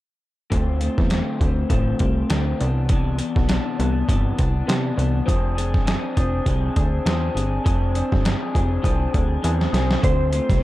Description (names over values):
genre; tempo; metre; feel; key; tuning
indie pop, bedroom pop; 101 BPM; 4/4; swing 55% on 16ths; unclear; A4 = 440 Hz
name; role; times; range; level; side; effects
electric guitar through a small old amp; accompaniment; 0.5-10.6 s; C3 to Ab4; -25 LUFS; left 2 dB; analog chorus, warbly pitch drift
plucky analog bass; bass; 0.5-10.6 s; F1 to C3; -22 LUFS; equal; none
dusty soul sampler-style drum kit; drums; 0.5-10.6 s; hi-hat, kick drum, snare drum; -22 LUFS; equal; overdrive
clean lap steel guitar; melody; 10.0-10.6 s; C5; -24 LUFS; equal; lush chorus
room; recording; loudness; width
light reverb, digital ambience; dark, warm production; -18 LUFS; side -16 dB against mid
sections
0.5-10.0 A section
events
drum fill 9.4-10.0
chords
0.5 Dm7; 2.6 Cmaj9; 5.3 Fm6; 10.0 Dm7